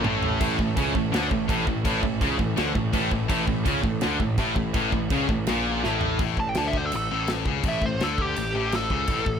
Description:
heavy metal; 166 BPM; 4/4; straight; A major; A4 = 440 Hz
rich chamber string section; sustained chords; 0.0-6.2 s; E3 to A4; -37 LUFS; right 1 dB
high-gain distorted guitar; riff; 0.0-9.4 s; A2 to D3; -29 LUFS; left 11 dB; distortion
high-gain distorted guitar; riff; 0.0-6.2 s; A2 to D3; -30 LUFS; left 1 dB; distortion
tight distorted guitar; riff; 0.0-6.2 s; A2 to D3; -29 LUFS; right 12 dB; distortion
fuzz picked electric bass; bass; 0.0-9.4 s; A1 to D2; -30 LUFS; equal; overdrive
modern studio drum kit; drums; 0.0-9.4 s; crash cymbal, kick drum, snare drum, toms; -28 LUFS; equal
nasal lead guitar with a parked wah; melody; 6.4-9.4 s; G4 to A5; -28 LUFS; right 1 dB; overdrive
small room ambience; -22 LUFS; side -7 dB against mid
0.0-6.2 A section; 6.2-9.4 B section
drum fill 0.0-0.4, 5.8-6.2; half time 0.0-6.2; lead electric guitar solo 6.2-9.4
0.0 A

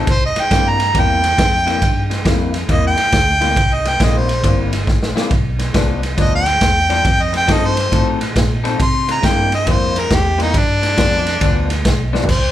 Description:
electric blues shuffle; 138 BPM; 4/4; swing 65% on 8ths; C mixolydian; A4 = 439 Hz
electric guitar through a small old amp; riff; 0.0-12.3 s; G2 to A4; -23 LUFS; left 5 dB
vintage muted fingered electric bass; bass; 0.0-12.5 s; G1 to C3; -20 LUFS; right 1 dB
clear harmonica; melody; 0.1-12.5 s; D4 to C6; -17 LUFS; equal; overdrive
raw garage drum kit; drums; 0.1-12.4 s; crash cymbal, kick drum, ride cymbal, snare drum, toms; -17 LUFS; equal
light reverb; band playing live in one room; -13 LUFS; side -12 dB against mid
0.0-12.3 A section
harmonica solo 0.0-12.3; drum fill 4.9-5.3, 12.1
0.1 C7; 5.3 G7; 7.1 F7; 8.8 C7; 10.5 G7

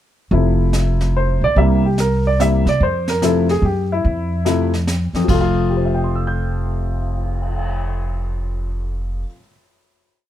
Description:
jazz piano trio; 145 BPM; 3/4; swing 66% on 8ths; F major; A4 = 441 Hz
warm baby grand piano; melody; 0.3-9.5 s; F2 to G6; -19 LUFS; left 2 dB
upright bass; bass; 0.3-9.2 s; F1 to C3; -19 LUFS; right 1 dB
jazz brush drum kit; drums; 0.3-7.7 s; brushed snare drum, crash cymbal, cymbal swell, hi-hat, kick drum, snare drum; -26 LUFS; right 2 dB
little or no reverb; dark, warm production; -16 LUFS; side -12 dB against mid
0.3-5.3 A section; 5.3-7.8 final chord
0.3 Fmaj7; 1.6 C7; 2.8 Fmaj7

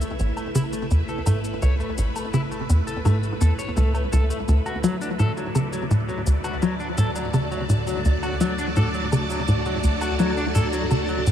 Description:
ambient, sequencer-driven space music; 84 BPM; 4/4; straight; A4 = 440 Hz
phased string machine; sustained chords; 0.0-11.3 s; A2 to A5; -28 LUFS; equal; ensemble chorus, phaser
clean electric guitar; arpeggios; 0.0-11.2 s; F#3 to C#5; -30 LUFS; left 2 dB; auto-pan, analog delay
tight sequencer bass; riff; 0.0-11.3 s; A1 to F#3; -22 LUFS; equal; analog chorus, analog delay
warm sub bass; bass; 0.0-11.3 s; A1 to D2; -36 LUFS; equal
shaker and woodblock; percussion; 0.0-11.3 s; -37 LUFS; left 2 dB; overdrive, analog delay
moderate huge ambient reverb, RT60 8.7 s; -20 LUFS; side -10 dB against mid
0.0-11.3 A section
fade-in on string machine 0.0-11.3; fade-in on sub bass 0.0-11.3
0.0 A; 4.5 D

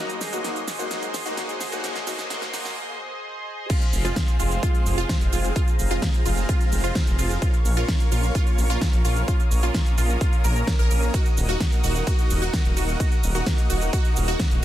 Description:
EDM, festival progressive house; 129 BPM; 4/4; straight; A4 = 442 Hz
warm baby grand piano; accompaniment; 0.0-2.7 s; Gb3 to Gb4; -34 LUFS; left 5 dB; sidechain pumping, tape echo
lush unison pad; sustained chords; 0.0-14.6 s; Ab4 to Eb6; -33 LUFS; equal; chorus, vintage 12-bit sampler grit, sidechain pumping
big supersaw lead; riff; 0.0-14.6 s; Ab3 to Bb4; -31 LUFS; equal; phaser, sidechain pumping, tape echo
riser; sound effects; 0.1-2.8 s; -40 LUFS; right 1 dB
big-room dance drum kit; drums; 0.1-14.6 s; crash cymbal, hi-hat, ride cymbal, shaker, snare drum; -30 LUFS; right 1 dB
detuned saw bass; bass; 0.2-14.6 s; Eb1 to Bb1; -24 LUFS; equal; sidechain pumping
wide unison pluck; arpeggios; 3.7-14.6 s; F4 to Bb4; -30 LUFS; right 2 dB; phaser, sidechain pumping, tape echo
electronic kick drum; drums; 3.7-14.5 s; -22 LUFS; equal
digital ambience; dense, heavily limited modern master, high-pass filter; -20 LUFS; side -13 dB against mid
0.0-3.7 A section; 3.7-14.6 B section
build-up 0.0-3.7; drum fill 0.0-2.8; filter sweep on supersaw synth 0.0-3.7; break 2.8-3.7; drop 3.7-14.6
0.0 Ab; 3.7 Fm; 7.4 Bbm; 11.1 Ebm

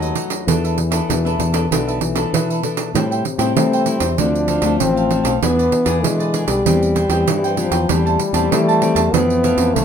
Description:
samba and choro; 97 BPM; 4/4; straight; A minor; A4 = 442 Hz
breathy trombone; second line; 0.0-9.8 s; C3 to G3; -24 LUFS; left 7 dB
cavaquinho; accompaniment; 0.0-9.8 s; D4 to A5; -25 LUFS; right 5 dB
nylon-string guitar; accompaniment; 0.0-9.8 s; F2 to A4; -25 LUFS; left 6 dB
fingered electric bass with an envelope filter; bass; 0.0-9.8 s; A1 to A3; -20 LUFS; equal
pandeiro; percussion; 0.0-9.8 s; -22 LUFS; right 8 dB
breathy trombone; melody; 3.6-9.8 s; G3 to D4; -18 LUFS; equal
light reverb; minimal, uncompressed stereo recording; -15 LUFS; side -8 dB against mid
0.0-2.9 A section; 2.9-9.8 B section
0.5 E7sus4; 2.9 Am7; 4.2 Dm7; 5.4 E7; 6.7 Cmaj7/E; 7.9 Am7/E; 9.1 Fmaj7

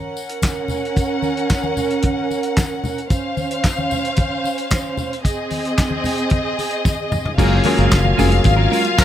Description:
disco; 112 BPM; 4/4; straight; A4 = 440 Hz
dark studio string section; second line; 0.0-9.0 s; C4 to Gb5; -21 LUFS; right 1 dB
tambourine; percussion; 0.2-9.0 s; -35 LUFS; left 5 dB
warm soul drum kit; drums; 0.3-9.0 s; crash cymbal, handclaps, hi-hat, kick drum, snare drum, toms; -19 LUFS; equal
congas; percussion; 0.4-9.0 s; -28 LUFS; left 3 dB
clean electric guitar; accompaniment; 7.4-9.0 s; Ab3 to Bb4; -22 LUFS; right 8 dB
warm baby grand piano; accompaniment; 7.4-9.0 s; Gb3 to Ab4; -20 LUFS; left 6 dB
overdriven tonewheel organ; sustained chords; 7.4-9.0 s; Gb3 to Ab5; -23 LUFS; equal; chorus vibrato, slow rotary speaker
fingered electric bass; bass; 7.4-8.7 s; F1 to Ab1; -16 LUFS; equal
clear horn section; stabs; 9.0 s; F3 to Bb4; -17 LUFS; left 3 dB
light reverb, studio ambience; -16 LUFS; side -11 dB against mid
0.0-7.4 A section; 7.4-9.0 B section
drum fill 6.9-7.4
0.0 Gb; 3.1 Dbmaj7; 5.2 Ab; 7.4 Gbmaj9

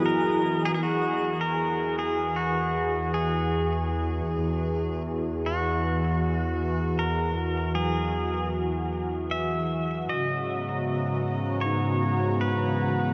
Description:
ambient; 77 BPM; 3/4; straight; E lydian; A4 = 435 Hz
pedal steel guitar; melody; 0.0-13.1 s; F#4 to E5; -32 LUFS; equal; delay
warm analog pad; sustained chords; 0.0-13.1 s; C#3 to A#5; -30 LUFS; equal; chorus, tremolo
tine electric piano; arpeggios; 0.0-13.1 s; F#3 to D#6; -36 LUFS; equal
warm studio double bass section; bass; 0.0-13.1 s; E2 to G#2; -34 LUFS; equal
organ-like drone; drone; 0.1-0.9, 12.1-13.1 s; E3 to B3; -43 LUFS; equal
twinkling granular texture; texture; 0.0-0.8 s; D#5 to D#6; -51 LUFS; equal
wet huge ambient reverb, RT60 8.7 s; -27 LUFS; mono
0.8-13.1 A section
0.0 F#9sus4; 0.8 Emaj9; 10.1 G#m11

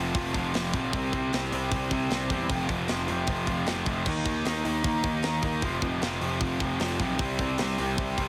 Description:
punk rock; 153 BPM; 4/4; straight; A4 = 441 Hz
raw garage guitar; riff; 0.0-8.3 s; F2 to Eb4; -33 LUFS; equal; overdrive
tight distorted guitar; riff; 0.0-8.3 s; F2 to Eb4; -33 LUFS; equal; distortion
fuzz picked electric bass; bass; 0.0-8.3 s; F1 to E2; -36 LUFS; equal; overdrive
tight metal drum kit; drums; 0.1-8.3 s; crash cymbal, hi-hat, kick drum, snare drum; -34 LUFS; equal
light reverb; heavily compressed radio sound, multiband compression; -28 LUFS; mono
0.0-8.3 A section
0.0 F5; 0.9 C5; 2.5 F5; 4.1 Eb5; 5.6 F5; 7.2 C5

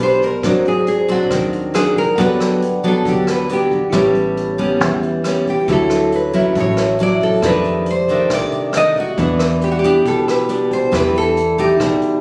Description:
bossa nova; 137 BPM; 4/4; straight; E minor; A4 = 440 Hz
nylon-string guitar; melody; 0.0-12.2 s; F#4 to Eb5; -21 LUFS; equal
bell-like tine electric piano; accompaniment; 0.0-12.2 s; D#4 to F#5; -25 LUFS; equal; subtle chorus
nylon-string guitar; accompaniment; 0.0-12.2 s; F2 to G4; -20 LUFS; equal
deep dub fingered electric bass; bass; 0.0-12.2 s; G1 to F2; -27 LUFS; equal
vintage brush drum kit; drums; 0.2-12.1 s; hi-hat, kick drum, rim click; -29 LUFS; equal
light reverb; recorded on a phone in the room, studio reverb, compression; -16 LUFS; mono
0.0-12.2 A section
0.4 G#7#11; 2.2 Gmaj7; 3.9 A9; 5.7 Dmaj9; 7.4 F13; 9.2 Em7

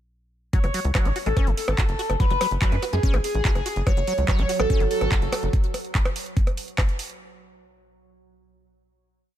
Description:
psychedelic trance; 144 BPM; 4/4; straight; F# minor; A4 = 440 Hz
overdriven synth lead; melody; 0.5-5.5 s; G#4 to C#5; -27 LUFS; equal; distortion, phaser, sidechain pumping, ping-pong delay
liquid acid bass; riff; 0.5-5.3 s; F#3 to F#4; -33 LUFS; left 1 dB; chorus, auto-pan, sidechain pumping, ping-pong delay
electronic kick drum; drums; 0.5-6.9 s; -22 LUFS; equal
techno drum kit; drums; 0.5-7.2 s; handclaps, hi-hat, percussion blips; -29 LUFS; right 1 dB
tight sequencer bass; bass; 0.6-5.5 s; F#1 to F#2; -25 LUFS; equal
bubbling stepped-filter texture; sustained chords; 4.0-5.6 s; F#3; -33 LUFS; right 2 dB; chorus, built-in reverb, sidechain pumping
little or no reverb; faint mains hum; -20 LUFS; side -12 dB against mid
0.5-7.2 drop
drop 0.5-7.2
0.5 F#5

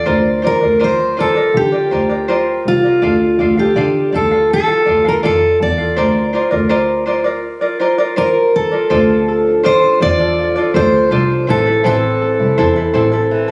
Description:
acoustic pop; 82 BPM; 4/4; straight; D minor; A4 = 440 Hz
fingerpicked steel-string acoustic guitar; melody; 0.0-13.3 s; F4 to D5; -17 LUFS; equal
tenor ukulele; accompaniment; 0.0-13.5 s; C4 to F5; -19 LUFS; equal
rich double bass; bass; 0.1-13.4 s; A1 to D3; -21 LUFS; equal
flamenco guitar; arpeggios; 8.9-13.5 s; E3 to A4; -23 LUFS; equal
moderate recital hall reverb, RT60 1.4 s; recorded on a phone in the room, studio reverb; -14 LUFS; mono
0.0-8.9 A section; 8.9-13.5 B section
0.1 Bbadd9/D; 3.0 Dm; 6.0 Bbadd9/D; 8.9 Dm7; 11.5 Am

